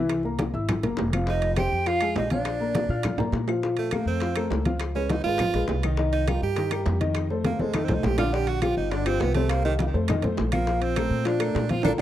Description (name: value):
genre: Afro-Cuban jazz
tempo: 204 BPM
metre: 4/4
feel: straight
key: Bb major from 3.6 s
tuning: A4 = 440 Hz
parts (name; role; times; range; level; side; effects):
- warm upright piano; accompaniment; 0.0-12.0 s; C3 to F6; -28 LUFS; left 4 dB; none
- upright bass; bass; 0.0-12.0 s; F1 to Bb2; -28 LUFS; equal; none
- bongos; percussion; 0.1-11.9 s; none; -35 LUFS; left 6 dB; none
- claves; percussion; 0.1-11.9 s; none; -40 LUFS; left 14 dB; none
- congas; percussion; 0.1-11.9 s; none; -30 LUFS; left 1 dB; none
- timbales; percussion; 0.1-12.0 s; none; -34 LUFS; right 8 dB; none
- mellow hollow silver concert flute; melody; 1.3-3.3 s; D5 to G5; -28 LUFS; right 1 dB; none
- edgy tenor saxophone; second line; 1.3-12.0 s; Eb3 to G4; -29 LUFS; right 6 dB; tape echo
room: studio reverb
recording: dry, close 1970s-style studio recording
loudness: -22 LUFS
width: side -12 dB against mid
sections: 0.0-3.6 A section; 3.6-12.0 B section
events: drum fill 3.2-3.6, 7.5-8.3; tenor saxophone solo 3.6-12.0; band accent 11.9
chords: 0.1 Caug7; 1.3 Fm7; 2.5 Bb7; 3.6 Bbsus2; 4.8 Db9; 6.0 Cm7; 7.2 F7; 8.3 Bb6; 8.9 G5; 9.5 Cm; 10.1 F7; 10.7 Bbmaj9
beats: | 0.10 0.40 0.69 0.99 | 1.28 1.57 1.87 2.16 | 2.46 2.75 3.04 3.34 | 3.63 3.92 4.22 4.51 | 4.81 5.10 5.39 5.69 | 5.98 6.28 6.57 6.86 | 7.16 7.45 7.74 8.04 | 8.33 8.62 8.92 9.21 | 9.51 9.80 10.09 10.39 | 10.68 10.97 11.27 11.56 | 11.85